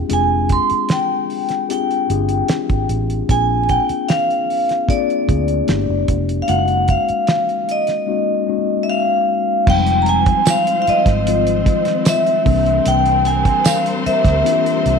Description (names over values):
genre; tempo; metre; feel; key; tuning
lush 1970s-style soul; 75 BPM; 4/4; straight; F dorian; A4 = 436 Hz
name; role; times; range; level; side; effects
mellow tine electric piano; accompaniment; 0.0-15.0 s; Eb3 to Ab4; -21 LUFS; left 11 dB; medium stereo tremolo
vibraphone with medium hard mallets; melody; 0.1-15.0 s; D5 to C6; -17 LUFS; right 1 dB; slapback echo
vintage muted fingered electric bass; bass; 0.1-15.0 s; F1 to D2; -20 LUFS; right 2 dB; none
cloth-damped thuddy drum kit; drums; 0.1-15.0 s; crash cymbal, hi-hat, kick drum, snare drum; -20 LUFS; right 2 dB; none
warm studio string section; sustained chords; 9.7-15.0 s; G3 to C5; -26 LUFS; left 1 dB; none
tambourine; percussion; 10.5-13.8 s; none; -27 LUFS; right 16 dB; none
room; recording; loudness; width
moderate echo chamber reverb, RT60 2.3 s; 1960s-style stereo with parts hard left and right; -14 LUFS; side -6 dB against mid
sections
0.0-9.7 A section; 9.7-15.0 B section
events
none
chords
0.0 Fm69; 3.3 Bb7; 5.7 G6; 6.5 Gb6; 9.7 Fm7; 12.5 C7